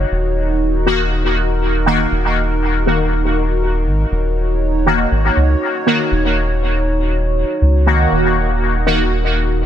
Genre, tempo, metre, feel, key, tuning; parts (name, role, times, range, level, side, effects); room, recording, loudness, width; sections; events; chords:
dub techno; 120 BPM; 4/4; straight; Eb minor; A4 = 440 Hz
dark analog pad; sustained chords; 0.0-9.7 s; Eb4 to Db5; -21 LUFS; right 1 dB; chorus, phaser
soft dub sub bass; bass; 0.0-9.7 s; Eb1 to Db2; -17 LUFS; equal
resonant sweep polysynth; stabs; 0.9-9.0 s; Eb3 to Gb4; -17 LUFS; left 1 dB; chorus, phaser, dub echo
light reverb; dense, heavily limited modern master; -14 LUFS; side -10 dB against mid
0.0-8.1 A section; 8.1-9.7 A section
filter sweep on analog polysynth 8.1-9.7
0.0 Ebm